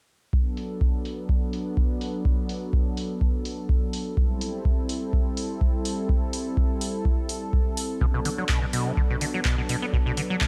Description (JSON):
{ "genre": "acid house", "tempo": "125 BPM", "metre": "4/4", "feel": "swing 54% on 16ths", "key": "B phrygian", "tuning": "A4 = 440 Hz", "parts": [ { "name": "warm analog pad", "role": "sustained chords", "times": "0.3-10.5 s", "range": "F#3 to A4", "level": "-33 LUFS", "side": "equal", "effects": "chorus, sidechain pumping" }, { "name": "electronic kick drum", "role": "drums", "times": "0.3-10.5 s", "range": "none", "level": "-26 LUFS", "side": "equal", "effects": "none" }, { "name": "punchy analog drum machine", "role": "drums", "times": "0.6-10.5 s", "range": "handclaps, hi-hat", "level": "-34 LUFS", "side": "equal", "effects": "overdrive, low-pass filter on hats, low-pass filter on snare, low-pass filter on room" }, { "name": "acid bass, saw", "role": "riff", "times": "8.0-10.5 s", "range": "B2 to B3", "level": "-30 LUFS", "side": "equal", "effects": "tube saturation, analog chorus, tape echo" } ], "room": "little or no reverb", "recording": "none", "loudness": "-26 LUFS", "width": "mono", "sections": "0.3-10.5 A section", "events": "none", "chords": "0.3 Bm7; 4.2 Am7; 8.0 Bm7" }